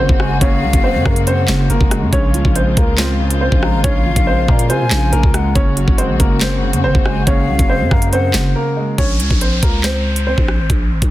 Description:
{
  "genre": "hip hop, drill",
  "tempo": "140 BPM",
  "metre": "4/4",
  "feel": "half-time",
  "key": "Bb minor",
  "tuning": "A4 = 440 Hz",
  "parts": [
    { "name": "warm upright piano", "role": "melody", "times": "0.0-10.7 s", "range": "Bb3 to Db5", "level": "-21 LUFS", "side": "equal", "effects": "ping-pong delay" },
    { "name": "felt-muted upright piano", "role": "accompaniment", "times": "0.0-9.0 s", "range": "Db3 to F4", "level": "-22 LUFS", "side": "right 3 dB", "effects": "none" },
    { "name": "dark studio string section", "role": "sustained chords", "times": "0.0-8.9 s", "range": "Db3 to Gb4", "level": "-24 LUFS", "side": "left 4 dB", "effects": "none" },
    { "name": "growling 808-style bass", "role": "bass", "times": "0.0-11.1 s", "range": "Gb1 to Db3", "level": "-17 LUFS", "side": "equal", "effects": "none" },
    { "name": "drill drum kit", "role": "drums", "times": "0.1-11.1 s", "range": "handclaps, hi-hat, kick drum, rim click, snare drum", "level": "-16 LUFS", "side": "equal", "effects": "soft clipping on snare" },
    { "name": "breathy mellow silver concert flute", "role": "second line", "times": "0.2-8.5 s", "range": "F5 to Bb5", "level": "-24 LUFS", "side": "left 5 dB", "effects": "ping-pong delay" },
    { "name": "downlifter", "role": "sound effects", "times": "9.0-11.1 s", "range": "none", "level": "-24 LUFS", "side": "equal", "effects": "none" }
  ],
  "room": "little or no reverb",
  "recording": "dense, heavily limited modern master",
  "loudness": "-12 LUFS",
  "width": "side -15 dB against mid",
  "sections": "0.0-9.0 A section; 9.0-11.1 B section",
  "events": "break 8.6-9.0",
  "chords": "0.0 Gbadd9; 2.1 Bbm7; 5.6 Gbadd9; 9.0 Bbm"
}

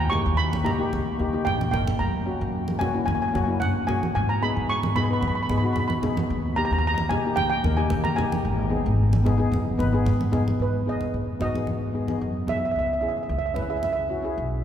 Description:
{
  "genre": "calypso",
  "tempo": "112 BPM",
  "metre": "4/4",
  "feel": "straight",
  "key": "G# minor",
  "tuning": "A4 = 440 Hz",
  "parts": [
    { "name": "steel pan", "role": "melody", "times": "0.0-14.0 s", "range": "B4 to C#6", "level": "-28 LUFS", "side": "right 2 dB", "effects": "none" },
    { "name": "upright bass", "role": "bass", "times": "0.0-14.6 s", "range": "F#1 to D#3", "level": "-26 LUFS", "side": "equal", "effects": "none" },
    { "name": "steel pan", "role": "accompaniment", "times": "0.1-14.5 s", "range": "A#3 to B4", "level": "-28 LUFS", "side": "left 3 dB", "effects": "none" },
    { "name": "congas", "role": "percussion", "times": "0.1-14.0 s", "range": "none", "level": "-31 LUFS", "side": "right 1 dB", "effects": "none" }
  ],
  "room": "wet cathedral reverb, RT60 6.3 s",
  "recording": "recorded in a church or concert hall",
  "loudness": "-22 LUFS",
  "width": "side -9 dB against mid",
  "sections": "0.0-10.6 A section; 10.6-14.6 B section",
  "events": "none",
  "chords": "0.0 D#; 2.0 F#; 4.1 G#m7; 6.3 D#; 8.4 G#m7; 12.8 C#m7"
}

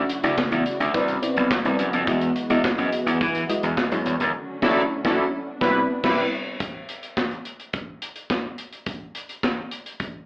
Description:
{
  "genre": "early-eighties boogie funk",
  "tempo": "106 BPM",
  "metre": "4/4",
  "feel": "straight",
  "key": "unclear",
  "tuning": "A4 = 440 Hz",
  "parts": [
    { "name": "FM electric piano with soft pad layer", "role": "accompaniment", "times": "0.0-6.2 s", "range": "C#3 to D#5", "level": "-25 LUFS", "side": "equal", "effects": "chorus, slapback echo" },
    { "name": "dark studio string section", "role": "sustained chords", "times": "0.0-6.6 s", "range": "C3 to F#4", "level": "-31 LUFS", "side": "equal", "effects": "none" },
    { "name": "gritty slap bass", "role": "bass", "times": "0.0-6.2 s", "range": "B1 to E3", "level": "-23 LUFS", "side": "equal", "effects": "overdrive" },
    { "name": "modern studio drum kit", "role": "drums", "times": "0.1-10.1 s", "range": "crash cymbal, handclaps, hi-hat, kick drum, snare drum", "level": "-26 LUFS", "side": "equal", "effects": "none" },
    { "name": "analog synth brass", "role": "second line", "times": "4.6-6.2 s", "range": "F#3 to B4", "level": "-23 LUFS", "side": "equal", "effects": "chorus, slapback echo" }
  ],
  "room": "moderate club reverb, RT60 0.6 s",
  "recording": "live gig heard through the venue's PA, club reverb, AM radio sound",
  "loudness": "-21 LUFS",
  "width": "side -26 dB against mid",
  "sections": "0.0-6.6 A section; 6.6-10.3 B section",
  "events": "band accent 4.3-6.6",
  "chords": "0.0 Dmaj9; 0.9 Cmaj9; 2.1 Emaj9; 4.3 Dmaj9; 5.5 Cmaj9; 6.6 N.C."
}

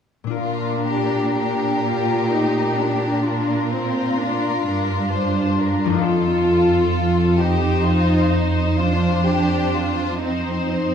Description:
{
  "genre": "classical",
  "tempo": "37-45 BPM (dotted quarters)",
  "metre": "12/8",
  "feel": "rubato",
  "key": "Bb major",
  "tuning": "A4 = 441 Hz",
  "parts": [
    { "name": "concert harp", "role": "arpeggios", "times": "0.2-9.9 s", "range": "F2 to Bb4", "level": "-26 LUFS", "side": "left 8 dB", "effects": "none" },
    { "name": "rich studio violin section", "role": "melody", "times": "0.4-10.9 s", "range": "A4 to C5", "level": "-28 LUFS", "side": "left 5 dB", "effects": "none" },
    { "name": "rich studio violin section", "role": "second line", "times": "0.4-10.9 s", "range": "Eb4 to G4", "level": "-25 LUFS", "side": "left 4 dB", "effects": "none" },
    { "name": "rich studio viola section", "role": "accompaniment", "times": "0.4-10.9 s", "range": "C4 to F4", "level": "-22 LUFS", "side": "right 1 dB", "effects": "none" },
    { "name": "clear studio cello section", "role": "bass", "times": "0.4-10.9 s", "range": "F2 to Bb2", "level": "-22 LUFS", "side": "right 3 dB", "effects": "none" }
  ],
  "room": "wet recital hall reverb, RT60 1.5 s",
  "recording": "dark, warm production",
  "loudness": "-17 LUFS",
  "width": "side -8 dB against mid",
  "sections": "0.4-10.9 A section",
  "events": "none",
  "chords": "0.4 Bb; 6.0 F7"
}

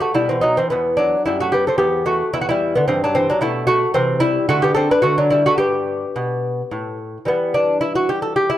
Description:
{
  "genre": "classical, baroque-style dance for lute",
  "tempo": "105-113 BPM",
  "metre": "3/4",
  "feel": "rubato",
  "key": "E minor, G major from 3.9 s",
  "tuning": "A4 = 440 Hz",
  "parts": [
    { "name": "lute", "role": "solo", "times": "0.0-8.6 s", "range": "E2 to B4", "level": "-16 LUFS", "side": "equal", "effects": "none" }
  ],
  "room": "light reverb",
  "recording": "dark, warm production",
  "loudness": "-16 LUFS",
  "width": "side -12 dB against mid",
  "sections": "0.0-7.3 A section; 7.3-8.6 A section",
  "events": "none",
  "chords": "0.0 B5; 0.7 Em; 3.9 C; 4.5 D6; 5.0 D; 5.6 G; 7.3 Em"
}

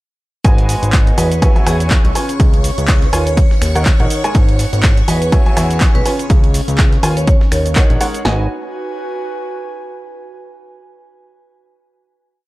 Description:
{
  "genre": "piano house",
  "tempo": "123 BPM",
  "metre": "4/4",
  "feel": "swing 57% on 16ths",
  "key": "G# minor",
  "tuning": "A4 = 440 Hz",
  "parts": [
    { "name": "string machine, violins", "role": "sustained chords", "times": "0.4-8.3 s", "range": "C#5 to C#6", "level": "-28 LUFS", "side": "equal", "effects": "ensemble chorus, sidechain pumping" },
    { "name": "clear upright piano", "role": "riff", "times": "0.4-8.4 s", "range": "C#3 to G#5", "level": "-20 LUFS", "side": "equal", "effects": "sidechain pumping" },
    { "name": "fat analog bass", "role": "bass", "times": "0.4-8.5 s", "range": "G#1 to E2", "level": "-17 LUFS", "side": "equal", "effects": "sidechain pumping" },
    { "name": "breakbeat sampler-style drum kit", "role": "drums", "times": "0.4-8.1 s", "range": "hi-hat, snare drum", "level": "-32 LUFS", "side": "left 1 dB", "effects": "none" },
    { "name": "punchy analog drum machine", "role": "drums", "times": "0.4-8.4 s", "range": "kick drum, snare drum", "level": "-12 LUFS", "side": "equal", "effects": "overdrive" },
    { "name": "punchy analog drum machine", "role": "drums", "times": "0.4-8.2 s", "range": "finger snaps, handclaps, hi-hat, shaker", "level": "-22 LUFS", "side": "right 1 dB", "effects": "overdrive" },
    { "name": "airy breathy pad", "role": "texture", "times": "0.8-10.2 s", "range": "B3 to G#5", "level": "-27 LUFS", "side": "equal", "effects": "chorus, sidechain pumping" },
    { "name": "vibraphone with hard mallets", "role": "melody", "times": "1.2-7.7 s", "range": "G#4 to C#5", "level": "-24 LUFS", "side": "right 2 dB", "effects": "vintage 12-bit sampler grit, tape echo" }
  ],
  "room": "little or no reverb",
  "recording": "dark, warm production",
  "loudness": "-11 LUFS",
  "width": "side -19 dB against mid",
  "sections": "0.4-8.2 drop; 8.2-10.2 final chord",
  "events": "drop 0.4-8.2",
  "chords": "0.4 G#m7; 1.4 E69; 2.2 C#7; 3.4 D#m7; 4.3 G#m7; 5.3 E69; 6.1 C#7; 7.3 D#m7; 8.2 G#m7"
}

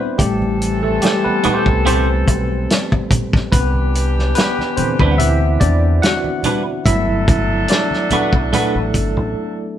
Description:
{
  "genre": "R&B, neo-soul",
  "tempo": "72 BPM",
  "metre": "4/4",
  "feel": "swing 54% on 16ths",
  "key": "A dorian",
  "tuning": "A4 = 440 Hz",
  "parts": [
    { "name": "barky tine electric piano", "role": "accompaniment", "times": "0.0-9.8 s", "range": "D3 to F#5", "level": "-19 LUFS", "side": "left 1 dB", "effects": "overdrive, medium stereo tremolo" },
    { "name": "warm horn section", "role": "stabs", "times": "0.2-9.7 s", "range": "E3 to A4", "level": "-24 LUFS", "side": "right 1 dB", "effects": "none" },
    { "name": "deep dub fingered electric bass", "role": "bass", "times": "0.2-9.3 s", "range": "G1 to E2", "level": "-18 LUFS", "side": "equal", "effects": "none" },
    { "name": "warm soul drum kit", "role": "drums", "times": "0.2-9.2 s", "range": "hi-hat, kick drum, snare drum", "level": "-17 LUFS", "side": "equal", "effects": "none" },
    { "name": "congas", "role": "percussion", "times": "0.2-9.1 s", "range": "none", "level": "-28 LUFS", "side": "right 3 dB", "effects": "none" },
    { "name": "clean electric guitar", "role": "second line", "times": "1.0-8.7 s", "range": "G3 to C5", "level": "-19 LUFS", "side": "right 2 dB", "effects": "none" }
  ],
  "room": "moderate studio reverb, RT60 0.8 s",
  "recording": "band playing live in one room",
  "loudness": "-14 LUFS",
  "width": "side -10 dB against mid",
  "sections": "0.0-9.8 A section",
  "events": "tine electric piano solo 0.0-9.8; break 9.4-9.8",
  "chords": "0.2 Am7; 3.5 Cmaj9; 6.9 Gmaj9"
}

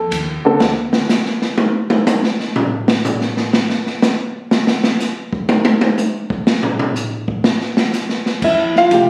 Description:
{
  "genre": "jazz piano trio",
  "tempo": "123 BPM",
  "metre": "4/4",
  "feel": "swing 69% on 8ths",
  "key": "F major",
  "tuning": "A4 = 440 Hz",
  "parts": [
    { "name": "dark grand piano", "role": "melody", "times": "0.0-0.6, 8.4-9.1 s", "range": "D3 to G5", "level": "-16 LUFS", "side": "equal", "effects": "plate reverb" },
    { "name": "upright bass", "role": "bass", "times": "0.0-0.9, 8.4-9.1 s", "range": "C2 to F2", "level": "-28 LUFS", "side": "equal", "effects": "none" },
    { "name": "open jazz drum kit", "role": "drums", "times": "0.1-9.1 s", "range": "crash cymbal, hi-hat, kick drum, ride cymbal, snare drum, toms", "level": "-18 LUFS", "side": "equal", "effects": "none" }
  ],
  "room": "moderate club reverb, RT60 0.8 s",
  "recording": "recorded on a phone in the room, studio reverb",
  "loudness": "-17 LUFS",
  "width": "mono",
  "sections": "0.0-8.4 A section",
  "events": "grand piano solo 0.0-8.4; drum solo 0.6-8.4",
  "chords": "0.0 F7; 0.6 N.C.; 8.4 Fmaj9"
}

